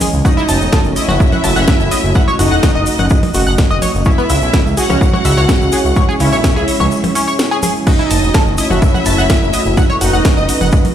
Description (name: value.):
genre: melodic techno.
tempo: 126 BPM.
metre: 4/4.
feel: straight.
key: F# dorian.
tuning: A4 = 439 Hz.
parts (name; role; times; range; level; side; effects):
dark analog pad; sustained chords; 0.0-10.9 s; E3 to D#5; -20 LUFS; right 2 dB; chorus, sidechain pumping.
tight sequenced synth; arpeggios; 0.0-10.7 s; B3 to A6; -19 LUFS; equal; chorus, sidechain pumping, tape echo.
techno drum kit; drums; 0.0-10.9 s; crash cymbal, hi-hat, percussion blips, ride cymbal, snare drum; -20 LUFS; left 1 dB; none.
egg shaker; percussion; 0.0-10.9 s; none; -27 LUFS; left 4 dB; none.
fat analog bass; bass; 0.1-10.7 s; E1 to C#2; -16 LUFS; equal; sidechain pumping.
analog synth brass; melody; 0.2-10.9 s; D#4 to F#4; -20 LUFS; right 1 dB; chorus, sidechain pumping, tape echo.
rich studio violin section; second line; 0.2-10.9 s; D#5 to F#5; -23 LUFS; left 1 dB; sidechain pumping, tape echo.
electronic kick drum; drums; 0.2-10.8 s; none; -13 LUFS; equal; none.
room: digital ambience.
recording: played on a big sound system in a bare room, large studio reverb.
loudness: -10 LUFS.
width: side -10 dB against mid.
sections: 0.0-10.9 A section.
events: break 6.9-7.9.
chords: 0.2 F#m; 4.1 C#m; 7.9 F#m.